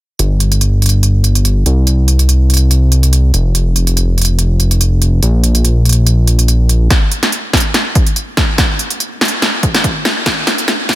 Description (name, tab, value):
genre	future bass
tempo	143 BPM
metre	4/4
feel	swing 54% on 16ths, half-time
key	unclear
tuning	A4 = 439 Hz
part	fat analog bass	bass	0.2-6.9 s	F1 to C2	-9 LUFS	equal	tube saturation, sidechain pumping
part	big-room dance drum kit	drums	0.2-11.0 s	hi-hat, snare drum	-14 LUFS	equal	none
part	electronic kick drum	drums	6.9-11.0 s	none	-14 LUFS	equal	none
room	little or no reverb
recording	dense, heavily limited modern master, high-pass filter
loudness	-10 LUFS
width	side -15 dB against mid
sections	0.2-6.9 A section; 6.9-11.0 B section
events	build-up 6.9-11.0; drum fill 6.9-11.0; filter sweep 6.9-11.0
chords	none